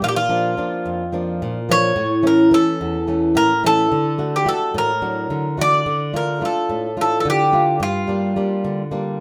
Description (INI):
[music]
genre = greek folk, Greek bouzouki band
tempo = 216 BPM (eighths)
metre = 7/8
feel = straight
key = unclear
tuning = A4 = 440 Hz
[part]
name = Greek bouzouki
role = melody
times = 0.0-9.2 s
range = F4 to D5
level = -22 LUFS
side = equal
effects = none
[part]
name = flamenco guitar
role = accompaniment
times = 0.0-9.2 s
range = E2 to F#4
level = -22 LUFS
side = equal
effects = none
[sound]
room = wet studio reverb, RT60 0.6 s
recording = none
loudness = -19 LUFS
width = mono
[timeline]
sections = 0.0-9.2 A section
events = none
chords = 0.0 Bb; 2.0 A; 3.9 D; 5.9 Dm; 7.8 Gm